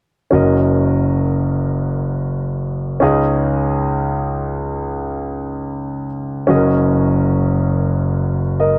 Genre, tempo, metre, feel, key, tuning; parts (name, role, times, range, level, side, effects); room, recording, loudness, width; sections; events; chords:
pop; 78 BPM; 4/4; straight; F# major; A4 = 440 Hz
warm grand piano; accompaniment; 0.3-8.8 s; F#1 to D#5; -18 LUFS; equal
light reverb; dry, close 1970s-style studio recording; -18 LUFS; mono
0.3-8.8 A section
0.3 F#6; 3.0 C#sus2; 6.5 F#6